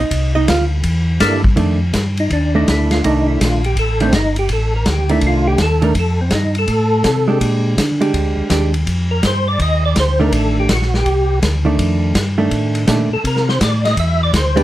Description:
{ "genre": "soul jazz organ trio", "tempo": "165 BPM", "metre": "4/4", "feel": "swing 65% on 8ths", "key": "F mixolydian", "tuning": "A4 = 440 Hz", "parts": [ { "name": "hollow-body jazz guitar", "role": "accompaniment", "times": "0.0-14.6 s", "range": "Eb3 to F5", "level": "-17 LUFS", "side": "right 2 dB", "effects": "none" }, { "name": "mellow tonewheel organ", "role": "bass", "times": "0.0-14.6 s", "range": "G1 to D3", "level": "-17 LUFS", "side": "equal", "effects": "slow rotary speaker" }, { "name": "vintage drum kit", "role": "drums", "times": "0.1-14.6 s", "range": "hi-hat, kick drum, ride cymbal, snare drum", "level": "-20 LUFS", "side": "equal", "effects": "none" }, { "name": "percussive tonewheel organ", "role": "melody", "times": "1.2-14.6 s", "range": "G3 to E5", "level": "-18 LUFS", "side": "equal", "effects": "slow rotary speaker, chorus vibrato" } ], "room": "light reverb", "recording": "none", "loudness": "-13 LUFS", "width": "side -14 dB against mid", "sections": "0.0-1.6 A section; 1.6-14.6 A section", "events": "hollow-body jazz guitar solo 0.0-1.6; tonewheel organ solo 1.6-14.6", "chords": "0.0 F7(no3); 0.8 Em7b5; 1.6 F13; 7.4 Bb6; 8.9 F13; 13.2 C69" }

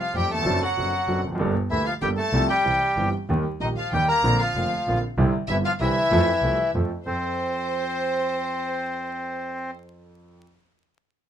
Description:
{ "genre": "tango", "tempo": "191 BPM", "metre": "3/4", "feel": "rubato", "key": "F major", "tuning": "A4 = 440 Hz", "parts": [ { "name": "bandoneon", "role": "melody", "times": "0.0-9.7 s", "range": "Eb3 to Bb4", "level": "-24 LUFS", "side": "left 1 dB", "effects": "none" }, { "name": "clear studio violin section", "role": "second line", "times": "0.0-9.7 s", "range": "C5 to Bb5", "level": "-29 LUFS", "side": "equal", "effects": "none" }, { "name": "warm grand piano", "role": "accompaniment", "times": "0.1-10.4 s", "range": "F1 to A4", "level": "-28 LUFS", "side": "right 2 dB", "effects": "none" }, { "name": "warm double bass", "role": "bass", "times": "0.1-7.2 s", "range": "F1 to F2", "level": "-27 LUFS", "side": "equal", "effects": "none" } ], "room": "light reverb", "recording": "minimal, uncompressed stereo recording, vinyl crackle", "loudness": "-21 LUFS", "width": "side -9 dB against mid", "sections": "0.0-7.1 A section; 7.1-8.9 B section", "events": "none", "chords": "0.5 D7/F#; 1.4 Gmadd9; 2.3 F/C; 2.7 C; 3.3 Eb; 4.2 Bbadd9; 5.2 Cadd9; 6.1 F" }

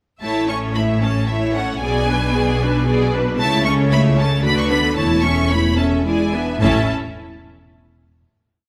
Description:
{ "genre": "quick classical-period movement for string orchestra", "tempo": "113 BPM", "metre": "3/4", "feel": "rubato", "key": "A major", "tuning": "A4 = 441 Hz", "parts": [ { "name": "rich symphonic violin section", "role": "melody", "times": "0.2-6.9 s", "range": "E5 to C#6", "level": "-26 LUFS", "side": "equal", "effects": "none" }, { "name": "clear symphonic violin section", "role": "second line", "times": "0.2-6.9 s", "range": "G#4 to E5", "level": "-28 LUFS", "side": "equal", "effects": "none" }, { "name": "rich symphonic viola section", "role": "accompaniment", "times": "0.2-6.9 s", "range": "G#3 to B4", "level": "-23 LUFS", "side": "equal", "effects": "none" }, { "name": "bright studio cello section", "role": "bass", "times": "0.2-6.9 s", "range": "E2 to D3", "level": "-25 LUFS", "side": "equal", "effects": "none" }, { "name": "rich symphonic double bass section", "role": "bass", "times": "0.2-6.9 s", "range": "E1 to D2", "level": "-23 LUFS", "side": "equal", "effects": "none" } ], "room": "moderate recital hall reverb, RT60 1.6 s", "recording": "none", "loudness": "-18 LUFS", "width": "mono", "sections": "0.2-6.6 theme; 6.6-8.2 final chord", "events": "none", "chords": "0.2 A; 1.8 G#dim/B; 3.4 A/C#; 4.4 Bm7/D; 5.0 A/E; 6.1 E7; 6.6 A" }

